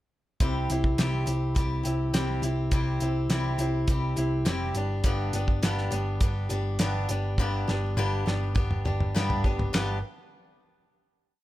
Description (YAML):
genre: folk rock and heartland rock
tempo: 103 BPM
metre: 4/4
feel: straight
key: G major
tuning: A4 = 440 Hz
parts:
  - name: picked old ladder-braced acoustic guitar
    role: accompaniment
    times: 0.4-10.0 s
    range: G2 to G4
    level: -30 LUFS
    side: left 1 dB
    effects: none
  - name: hollow-body short-scale picked electric bass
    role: bass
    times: 0.4-10.0 s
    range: F1 to G2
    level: -28 LUFS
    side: equal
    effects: none
  - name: cloth-damped thuddy drum kit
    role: drums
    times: 0.4-9.9 s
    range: hi-hat, kick drum, ride cymbal, snare drum, toms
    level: -27 LUFS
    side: equal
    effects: none
room: little or no reverb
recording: none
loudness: -24 LUFS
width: side -15 dB against mid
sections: 0.4-9.7 verse; 9.7-11.4 final chord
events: drum fill 7.4-9.7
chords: 0.4 C; 4.8 G